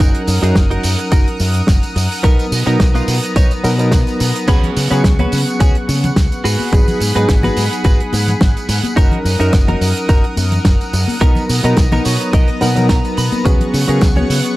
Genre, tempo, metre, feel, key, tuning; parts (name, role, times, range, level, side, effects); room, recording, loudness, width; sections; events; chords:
nu-disco, nu disco; 107 BPM; 4/4; swing 54% on 16ths; F# major; A4 = 440 Hz
barky reed electric piano; accompaniment; 0.0-14.6 s; F#3 to A#4; -20 LUFS; equal; overdrive, tremolo, low-pass filter, analog delay
lush unison pad; sustained chords; 0.0-14.6 s; B3 to D#6; -24 LUFS; equal; chorus, sidechain pumping
direct-recorded clean electric guitar; riff; 0.0-14.4 s; B3 to B5; -22 LUFS; right 1 dB; wide subtle chorus, vintage 12-bit sampler grit, analog delay
fingered electric bass with an envelope filter; bass; 0.0-14.4 s; F#1 to C#3; -17 LUFS; equal; sidechain pumping
damped 70s drum kit; drums; 0.0-14.6 s; crash cymbal, hi-hat, snare drum, tambourine; -21 LUFS; right 1 dB; studio reverb
electronic kick drum; drums; 0.0-14.1 s; -13 LUFS; equal; studio reverb
congas; percussion; 4.6-14.3 s; -23 LUFS; left 2 dB
studio reverb; -12 LUFS; side -18 dB against mid
0.0-14.6 A section
clean electric guitar fill 11.8-13.5
0.0 F#6; 2.2 Bmaj7; 4.5 C#7sus4; 6.4 G#m7; 9.0 F#6; 11.2 Bmaj7; 13.5 C#7sus4